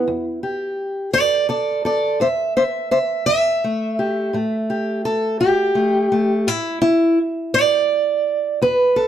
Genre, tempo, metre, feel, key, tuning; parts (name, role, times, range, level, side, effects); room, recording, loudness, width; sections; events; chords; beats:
acoustic country blues, solo or duo; 56 BPM (dotted quarters); 12/8; straight; A4 = 440 Hz
fingerpicked steel-string acoustic guitar; solo; 0.0-9.1 s; E2 to E5; -16 LUFS; right 1 dB
moderate studio reverb, RT60 0.9 s; -17 LUFS; side -10 dB against mid
0.0-9.1 A section
steel-string acoustic guitar solo 0.0-9.1
0.1 A7(no3)
| 0.07 1.14 2.20 3.27 | 4.34 5.41 6.47 7.54 | 8.62